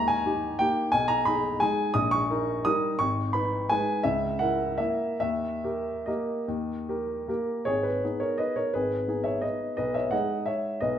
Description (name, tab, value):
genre	classical, piano waltz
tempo	136-188 BPM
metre	3/4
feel	rubato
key	G# minor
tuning	A4 = 440 Hz
part	warm grand piano	solo	0.0-11.0 s	G#1 to D#6	-25 LUFS	equal	none
room	wet recital hall reverb, RT60 1.4 s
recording	minimal, uncompressed stereo recording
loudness	-25 LUFS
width	side -9 dB against mid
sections	0.0-7.7 A section; 7.7-11.0 B section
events	none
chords	0.0 D#; 0.9 G#m/B; 1.9 D#7/A#; 3.0 G#m; 4.1 A#dim/C#; 5.2 D#; 7.7 G#m; 9.8 G#m/B